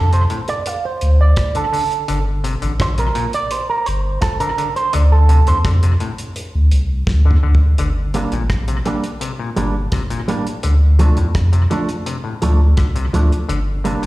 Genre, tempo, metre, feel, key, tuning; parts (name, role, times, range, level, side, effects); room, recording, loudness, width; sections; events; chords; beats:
roots reggae; 84 BPM; 4/4; straight; D minor; A4 = 440 Hz
electric guitar with an envelope filter; accompaniment; 0.0-14.0 s; F3 to F5; -21 LUFS; right 4 dB; tape echo, plate reverb, slapback echo
overdriven clav; arpeggios; 0.0-14.1 s; A2 to D3; -26 LUFS; left 4 dB; auto-wah, plate reverb, slapback echo
warm sub bass; bass; 0.0-14.1 s; G1 to F2; -14 LUFS; equal
cloth-damped thuddy drum kit; drums; 0.1-14.1 s; hi-hat, kick drum, rim click, snare drum, toms; -22 LUFS; equal; analog delay
little or no reverb; live gig heard through the venue's PA, recital hall reverb; -14 LUFS; side -18 dB against mid
0.0-7.8 A section; 7.8-14.1 B section
clean electric guitar solo 0.0-7.8; drum fill 7.1-7.8
0.0 Dm; 2.1 Gm; 4.9 D5; 7.8 Gm; 10.6 Dm; 13.5 Gm
0.66 1.37 | 2.08 2.80 3.51 4.22 | 4.93 5.65 6.36 7.07 | 7.78 8.50 9.21 9.92 | 10.64 11.35 12.06 12.78 | 13.49